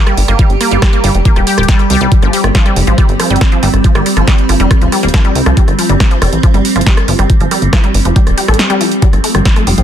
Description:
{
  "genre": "psychedelic trance",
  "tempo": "139 BPM",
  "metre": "4/4",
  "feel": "straight",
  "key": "unclear",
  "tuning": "A4 = 440 Hz",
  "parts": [
    { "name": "evolving wavetable pad", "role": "sustained chords", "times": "0.0-9.8 s", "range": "F3 to G4", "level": "-16 LUFS", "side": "right 2 dB", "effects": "phaser, built-in reverb, sidechain pumping" },
    { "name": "wide unison pluck", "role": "riff", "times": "0.1-9.7 s", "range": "F3 to A4", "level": "-16 LUFS", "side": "moving between left 6 dB and right 6 dB", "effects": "auto-pan, sidechain pumping, ping-pong delay" },
    { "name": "techno drum kit", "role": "drums", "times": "0.1-9.8 s", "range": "hi-hat, rim click, snare drum", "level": "-17 LUFS", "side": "right 1 dB", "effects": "soft clipping on snare" },
    { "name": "plucky analog bass", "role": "bass", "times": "0.2-9.8 s", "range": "D1 to C2", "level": "-13 LUFS", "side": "equal", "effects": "none" },
    { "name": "electronic kick drum", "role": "drums", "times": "0.4-9.5 s", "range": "none", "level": "-9 LUFS", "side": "equal", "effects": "overdrive" },
    { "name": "resonant blip pluck", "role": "second line", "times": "2.9-5.2, 9.8 s", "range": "G3 to C4", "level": "-24 LUFS", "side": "left 4 dB", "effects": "phaser, wide subtle chorus, sidechain pumping, high-pass filter, dub echo" },
    { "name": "swell", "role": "sound effects", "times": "8.3-9.0 s", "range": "none", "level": "-23 LUFS", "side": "left 3 dB", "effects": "none" }
  ],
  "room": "digital ambience",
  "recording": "dense, heavily limited modern master",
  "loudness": "-8 LUFS",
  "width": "side -10 dB against mid",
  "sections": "0.0-9.8 A section",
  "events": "swell 8.3-9.0",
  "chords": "0.0 G5"
}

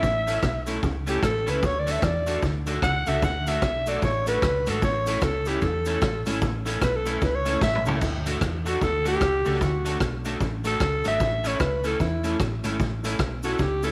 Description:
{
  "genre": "ska",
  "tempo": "150 BPM",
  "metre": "4/4",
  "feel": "swing 62% on 8ths",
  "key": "D major",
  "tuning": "A4 = 440 Hz",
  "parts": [
    { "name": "raspy alto saxophone", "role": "melody", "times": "0.0-13.9 s", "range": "E4 to F#5", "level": "-28 LUFS", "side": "equal", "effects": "none" },
    { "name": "semi-hollow electric guitar", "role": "riff", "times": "0.0-13.7 s", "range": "G#2 to E3", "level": "-39 LUFS", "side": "equal", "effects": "none" },
    { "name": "hollow-body short-scale fingered electric bass", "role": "bass", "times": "0.0-13.9 s", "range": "G#1 to E2", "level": "-32 LUFS", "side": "equal", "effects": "none" },
    { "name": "street-band drum kit", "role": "drums", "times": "0.0-13.9 s", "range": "crash cymbal, hi-hat, kick drum, rim click, snare drum, toms", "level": "-30 LUFS", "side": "equal", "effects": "tape echo" },
    { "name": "cabasa", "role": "percussion", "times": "0.0-13.9 s", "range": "none", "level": "-50 LUFS", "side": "equal", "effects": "none" },
    { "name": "electric guitar at the edge of break-up", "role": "accompaniment", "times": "0.3-13.9 s", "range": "A3 to A4", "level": "-36 LUFS", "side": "equal", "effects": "lush chorus, tape echo" },
    { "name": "dark upright piano", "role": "stabs", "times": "0.3-13.9 s", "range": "A3 to A4", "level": "-37 LUFS", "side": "equal", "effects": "none" }
  ],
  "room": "moderate echo chamber reverb, RT60 1.3 s, small room ambience",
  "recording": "none",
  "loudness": "-25 LUFS",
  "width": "mono",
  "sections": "0.0-8.0 A section; 8.0-13.9 A section",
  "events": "alto saxophone solo 0.0-8.0, 8.0-13.9; drum fill 7.6-8.0",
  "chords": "0.0 A; 1.6 D; 4.8 A; 8.0 D; 11.2 A"
}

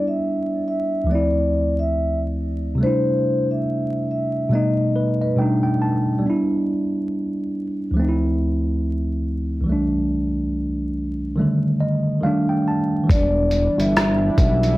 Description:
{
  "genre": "lo-fi hip hop",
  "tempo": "70 BPM",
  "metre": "4/4",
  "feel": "swing 59% on 16ths",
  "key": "unclear",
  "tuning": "A4 = 438 Hz",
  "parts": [
    { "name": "vibraphone with soft mallets", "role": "melody", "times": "0.0-5.4, 13.1-14.8 s", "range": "B4 to E5", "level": "-24 LUFS", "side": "left 1 dB", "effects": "analog delay" },
    { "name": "tine electric piano", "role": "accompaniment", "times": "0.0-14.8 s", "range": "C2 to A5", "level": "-20 LUFS", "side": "equal", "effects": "cassette tape" },
    { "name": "granular cloud pad", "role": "sustained chords", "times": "13.6-14.8 s", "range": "G3 to E4", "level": "-28 LUFS", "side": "left 1 dB", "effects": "built-in reverb" },
    { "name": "fat analog bass", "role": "bass", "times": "13.1-14.8 s", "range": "E1 to B1", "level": "-20 LUFS", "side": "equal", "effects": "none" },
    { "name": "lo-fi sampler-style drum kit", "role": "drums", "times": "13.1-14.8 s", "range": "hi-hat, kick drum, rim click", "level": "-19 LUFS", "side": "equal", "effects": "none" }
  ],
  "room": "moderate small room reverb, RT60 0.5 s",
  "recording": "vinyl crackle",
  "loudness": "-18 LUFS",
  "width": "side -17 dB against mid",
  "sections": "0.0-13.1 A section; 13.1-14.8 B section",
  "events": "none",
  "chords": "0.0 Em7; 1.1 Dm9; 2.8 C6; 4.5 Baug7; 5.4 B7alt; 6.2 Em7; 8.0 Dm9; 9.7 C6; 11.4 Ebmaj7#11/D; 12.2 Ebmaj9#11; 13.1 Em7"
}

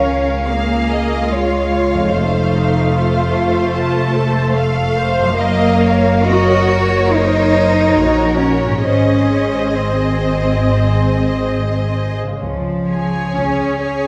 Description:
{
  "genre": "classical, slow romantic movement for symphony orchestra",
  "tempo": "61-76 BPM",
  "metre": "4/4",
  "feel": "rubato",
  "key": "Db major",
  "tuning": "A4 = 440 Hz",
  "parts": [
    { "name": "warm symphonic violin section", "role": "melody", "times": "0.0-14.1 s", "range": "C5 to A5", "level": "-25 LUFS", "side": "equal", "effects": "none" },
    { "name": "clear symphonic violin section", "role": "second line", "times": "0.0-14.1 s", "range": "Bb4 to F5", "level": "-25 LUFS", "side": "equal", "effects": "none" },
    { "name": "rich symphonic viola section", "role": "accompaniment", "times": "0.0-14.1 s", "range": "Eb4 to C5", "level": "-25 LUFS", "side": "equal", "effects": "none" },
    { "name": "concert harp", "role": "arpeggios", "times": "0.0-14.1 s", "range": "F2 to Eb5", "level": "-26 LUFS", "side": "equal", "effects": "none" },
    { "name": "clear symphonic cello section", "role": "bass", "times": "0.0-14.1 s", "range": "F3 to Gb4", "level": "-20 LUFS", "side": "equal", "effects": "none" },
    { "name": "rich symphonic double bass section", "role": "bass", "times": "0.0-14.1 s", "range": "F1 to Db2", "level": "-21 LUFS", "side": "equal", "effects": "none" }
  ],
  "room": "wet scoring stage reverb, RT60 1.7 s",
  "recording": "heard from further back in the room",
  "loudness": "-15 LUFS",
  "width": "mono",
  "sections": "0.0-14.1 A section",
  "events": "none",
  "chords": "0.0 Db; 2.1 F7; 5.4 Gb; 8.8 Ab; 12.4 Db"
}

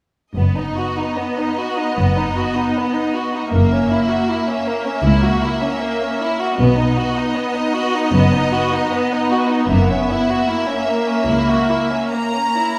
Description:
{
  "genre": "classical, slow romantic movement for string orchestra",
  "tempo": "77 BPM",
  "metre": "4/4",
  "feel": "rubato",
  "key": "B major",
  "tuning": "A4 = 440 Hz",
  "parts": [
    { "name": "rich studio violin section", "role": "melody", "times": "0.4-12.8 s", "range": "D#5 to A#5", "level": "-26 LUFS", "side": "equal", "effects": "none" },
    { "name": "rich studio violin section", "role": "second line", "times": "0.4-12.8 s", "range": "A#3 to F#4", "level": "-23 LUFS", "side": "equal", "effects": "none" },
    { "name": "rich studio viola section", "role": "accompaniment", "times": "0.4-12.8 s", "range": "A#3 to B3", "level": "-24 LUFS", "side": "equal", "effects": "none" },
    { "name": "rich studio cello section", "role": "bass", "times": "0.4-11.9 s", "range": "C#2 to B2", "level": "-23 LUFS", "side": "equal", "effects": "none" },
    { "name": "rich studio double bass section", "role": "bass", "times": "0.4-11.9 s", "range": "F#1 to C#2", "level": "-24 LUFS", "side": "equal", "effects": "none" }
  ],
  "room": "wet recital hall reverb, RT60 1.5 s",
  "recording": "recorded in a church or concert hall",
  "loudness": "-18 LUFS",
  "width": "mono",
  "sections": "0.4-12.8 A section",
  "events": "none",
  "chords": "0.4 B/F#; 3.5 F#7; 6.6 B; 9.7 F#7"
}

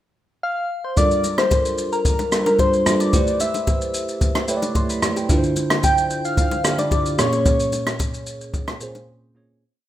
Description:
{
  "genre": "amapiano",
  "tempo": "111 BPM",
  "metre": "4/4",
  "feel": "straight",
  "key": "G dorian",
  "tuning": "A4 = 439 Hz",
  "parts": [
    { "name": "soft struck synth lead", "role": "melody", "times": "0.4-8.3 s", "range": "Bb4 to G5", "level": "-21 LUFS", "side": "left 1 dB", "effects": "chorus, ping-pong delay" },
    { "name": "bell-like tine electric piano", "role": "accompaniment", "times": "1.0-9.6 s", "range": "Bb2 to C6", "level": "-23 LUFS", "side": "right 2 dB", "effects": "phaser" },
    { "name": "open jazz drum kit", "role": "drums", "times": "1.0-9.1 s", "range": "kick drum, rim click, shaker", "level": "-21 LUFS", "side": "equal", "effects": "none" },
    { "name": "congas and bongos", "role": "percussion", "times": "1.0-9.1 s", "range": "none", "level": "-31 LUFS", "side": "left 2 dB", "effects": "none" }
  ],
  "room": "moderate digital room reverb, RT60 1.2 s, small room ambience",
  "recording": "rough home demo mix",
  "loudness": "-17 LUFS",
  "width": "side -12 dB against mid",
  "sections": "0.0-1.0 pickup bar; 1.0-9.6 groove",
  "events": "fade-out 7.5-9.6; break 9.1-9.6",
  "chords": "0.0 N.C.; 1.0 Gm9; 3.1 Am9; 5.3 Dm9; 7.2 Bbm9"
}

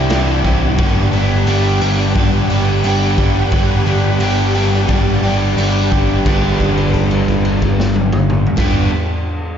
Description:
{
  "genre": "rock, shoegaze and dream pop",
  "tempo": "88 BPM",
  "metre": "4/4",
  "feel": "straight",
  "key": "G major",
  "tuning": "A4 = 440 Hz",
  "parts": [
    { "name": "string machine, violins", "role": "sustained chords", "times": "0.0-8.9 s", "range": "G3 to B5", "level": "-25 LUFS", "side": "right 1 dB", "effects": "ensemble chorus" },
    { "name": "electric guitar at the edge of break-up", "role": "arpeggios", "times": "0.0-8.9 s", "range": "E3 to G4", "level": "-25 LUFS", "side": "left 2 dB", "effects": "lush chorus, analog delay" },
    { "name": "overdriven electric guitar", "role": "riff", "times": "0.0-8.9 s", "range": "G2 to G4", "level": "-19 LUFS", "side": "left 6 dB", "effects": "lush chorus" },
    { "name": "overdriven semi-hollow guitar", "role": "riff", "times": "0.0-8.9 s", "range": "G2 to G4", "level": "-20 LUFS", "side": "right 8 dB", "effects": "reverse reverb" },
    { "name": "overdriven picked electric bass", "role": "bass", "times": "0.0-8.9 s", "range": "G1 to C2", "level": "-17 LUFS", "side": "equal", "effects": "none" },
    { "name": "raw garage drum kit", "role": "drums", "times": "0.1-8.7 s", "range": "crash cymbal, hi-hat, kick drum, snare drum, toms", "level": "-19 LUFS", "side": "equal", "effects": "none" }
  ],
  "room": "wet lush hall reverb, RT60 2.4 s",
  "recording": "dreamy mix soaked in reverb, nothing above 7.6 kHz",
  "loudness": "-12 LUFS",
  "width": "side -8 dB against mid",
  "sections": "0.0-6.3 A section; 6.3-9.0 B section",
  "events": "held note 6.3-8.6",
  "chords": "0.0 Cmaj9; 0.8 Gmaj7"
}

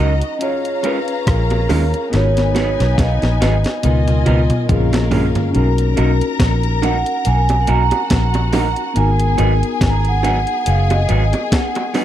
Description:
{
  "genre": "lovers rock reggae",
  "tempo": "70 BPM",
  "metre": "4/4",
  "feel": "swing 56% on 16ths",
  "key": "unclear",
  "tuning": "A4 = 439 Hz",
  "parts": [
    { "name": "vibraphone with soft mallets", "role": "melody", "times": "0.0-12.0 s", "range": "Bb4 to A#5", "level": "-21 LUFS", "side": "right 4 dB", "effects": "tape echo" },
    { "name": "warm symphonic string section", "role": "second line", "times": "0.0-12.0 s", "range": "Db4 to Bb5", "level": "-25 LUFS", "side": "left 5 dB", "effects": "none" },
    { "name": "mellow tine electric piano", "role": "accompaniment", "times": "0.0-12.0 s", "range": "Bb3 to Db5", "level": "-24 LUFS", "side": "left 5 dB", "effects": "phaser, tape echo" },
    { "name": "electric guitar through a small old amp", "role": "stabs", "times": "0.0-12.0 s", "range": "F3 to Bb4", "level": "-25 LUFS", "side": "right 3 dB", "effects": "tape echo" },
    { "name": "vintage muted fingered electric bass", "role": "bass", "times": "0.0-11.3 s", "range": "Gb1 to Eb2", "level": "-16 LUFS", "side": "equal", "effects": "none" },
    { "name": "clean 12-bit digital drum machine", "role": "drums", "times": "0.2-12.0 s", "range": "hi-hat, kick drum, rim click, snare drum, toms", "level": "-20 LUFS", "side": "equal", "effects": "tape echo" },
    { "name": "bongos", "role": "percussion", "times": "0.8-12.0 s", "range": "none", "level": "-26 LUFS", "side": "right 3 dB", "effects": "none" }
  ],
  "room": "digital ambience",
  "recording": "dark, warm production",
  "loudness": "-14 LUFS",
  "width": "side -11 dB against mid",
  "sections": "0.0-5.5 A section; 5.5-12.0 B section",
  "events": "drum fill 2.1-5.5",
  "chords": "0.4 Bbm7; 2.1 Abm7; 3.8 Db13; 4.7 Bbm7; 5.5 Bmaj7; 9.0 Abm7"
}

